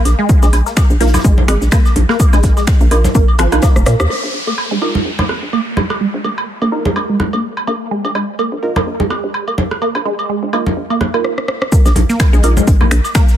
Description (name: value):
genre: minimal techno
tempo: 126 BPM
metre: 4/4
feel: swing 56% on 16ths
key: unclear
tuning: A4 = 440 Hz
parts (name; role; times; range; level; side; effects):
- modern studio drum kit; drums; 0.0-4.0, 11.7-13.4 s; hi-hat, snare drum; -33 LUFS; left 3 dB; sidechain pumping on hats, high-pass filter on hats, high-pass filter on snare, high-pass filter on room
- hollow knocking FM bass; bass; 0.1-13.0 s; F1 to Bb2; -16 LUFS; equal; sidechain pumping, high-pass filter
- house drum kit; drums; 0.1-4.2, 11.2-13.4 s; crash cymbal, finger snaps, hi-hat, rim click, shaker; -22 LUFS; equal; overdrive, low-pass filter on hats, low-pass filter on perc, low-pass filter on snare, low-pass filter on cymbals, low-pass filter on room
- electronic woodblock, congas and rim click; percussion; 0.1-13.1 s; none; -19 LUFS; right 1 dB; none
- resonant blip pluck; riff; 0.2-13.2 s; F3 to Bb3; -19 LUFS; right 1 dB; phaser, sidechain pumping, dub echo
- electronic kick drum; drums; 0.3-3.7, 11.7-13.3 s; none; -11 LUFS; equal; overdrive
- filtered dub chord stab; stabs; 1.0-12.5 s; Eb4 to Bb4; -22 LUFS; right 3 dB; phaser, dub echo
- downlifter; sound effects; 4.1-7.9 s; none; -26 LUFS; equal; none
room: light reverb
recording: none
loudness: -12 LUFS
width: side -10 dB against mid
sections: 0.0-4.1 A section; 4.1-11.7 B section; 11.7-13.4 C section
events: drum fill 3.6-4.1, 11.2-11.7; band accent 4.0; filter sweep on synth arpeggio sound 4.1-11.7; drop 11.7-13.4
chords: none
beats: | 0.29 0.77 1.25 1.72 | 2.20 2.67 3.15 3.63 | 4.10 4.58 5.05 5.53 | 6.01 6.48 6.96 7.43 | 7.91 8.39 8.86 9.34 | 9.82 10.29 10.77 11.24 | 11.72 12.20 12.67 13.15